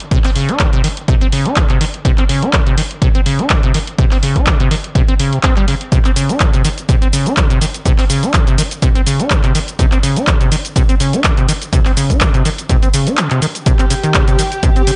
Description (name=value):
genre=acid house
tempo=124 BPM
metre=4/4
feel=swing 54% on 16ths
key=C phrygian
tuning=A4 = 438 Hz
part: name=punchy analog drum machine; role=drums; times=0.0-15.0 s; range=cabasa, handclaps, hi-hat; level=-21 LUFS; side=equal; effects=none
part: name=acid bass, saw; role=riff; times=0.1-14.9 s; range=C3 to Eb4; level=-19 LUFS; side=equal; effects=subtle chorus, sidechain pumping, tape echo
part: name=electronic kick drum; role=drums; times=0.1-14.7 s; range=none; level=-16 LUFS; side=equal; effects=none
part: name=warm studio string section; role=sustained chords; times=13.7-15.0 s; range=G4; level=-22 LUFS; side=equal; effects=sidechain pumping
room=light reverb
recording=nothing above 10.7 kHz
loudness=-14 LUFS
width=mono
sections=0.0-15.0 A section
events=break 13.2-13.7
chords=0.0 C5